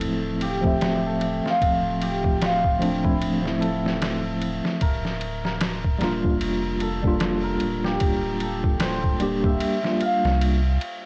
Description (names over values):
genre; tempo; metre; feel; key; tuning
trip hop; 75 BPM; 4/4; swing 58% on 16ths; unclear; A4 = 440 Hz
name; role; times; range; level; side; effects
cimbalom; melody; 0.0-11.1 s; E4 to F5; -30 LUFS; equal; cassette tape, dub echo
tine electric piano; accompaniment; 0.0-10.6 s; F3 to E5; -27 LUFS; equal; tremolo, vintage 12-bit sampler grit, low-pass filter
warm sub bass; bass; 0.0-10.8 s; D1 to C2; -32 LUFS; equal; none
trip hop sampler-style drum kit; drums; 0.0-11.0 s; kick drum, ride cymbal, snare drum; -29 LUFS; equal; cassette tape
room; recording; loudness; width
moderate booth ambience, RT60 0.2 s; home recording on cassette; -23 LUFS; mono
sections
0.0-11.1 A section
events
filter sweep on tine electric piano 0.0-11.1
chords
0.0 Dm7; 4.8 C7sus4/D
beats
0.01 0.81 | 1.61 2.41 3.21 4.01 | 4.81 5.61 6.41 7.21 | 8.01 8.81 9.61 10.41